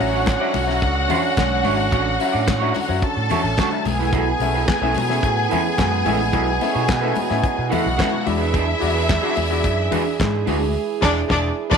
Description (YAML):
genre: disco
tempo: 109 BPM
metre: 4/4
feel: straight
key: unclear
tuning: A4 = 440 Hz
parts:
  - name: clear studio string section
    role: second line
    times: 0.0-11.8 s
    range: D4 to A5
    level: -23 LUFS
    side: left 2 dB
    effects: none
  - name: clear grand piano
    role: accompaniment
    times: 0.0-11.8 s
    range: B2 to F#4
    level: -27 LUFS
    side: left 12 dB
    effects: none
  - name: electric guitar at the edge of break-up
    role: accompaniment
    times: 0.0-11.8 s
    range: D4 to D5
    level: -27 LUFS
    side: right 13 dB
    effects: warbly pitch drift
  - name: warm French horn section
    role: sustained chords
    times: 0.0-11.8 s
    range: D3 to G#4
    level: -25 LUFS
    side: right 13 dB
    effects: none
  - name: overdriven picked electric bass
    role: bass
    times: 0.0-11.8 s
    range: E1 to B2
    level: -24 LUFS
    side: equal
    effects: none
  - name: damped 70s drum kit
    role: drums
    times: 0.0-11.8 s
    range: crash cymbal, handclaps, hi-hat, kick drum, snare drum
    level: -25 LUFS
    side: equal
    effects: none
  - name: congas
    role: percussion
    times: 0.3-10.6 s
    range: none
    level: -28 LUFS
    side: left 10 dB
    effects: none
room: light reverb, small room ambience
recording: 1960s-style stereo with parts hard left and right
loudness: -17 LUFS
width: side -6 dB against mid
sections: 0.0-11.8 A section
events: band accent 10.7-11.8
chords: 0.0 Dmaj7; 3.9 B7sus4; 8.3 E7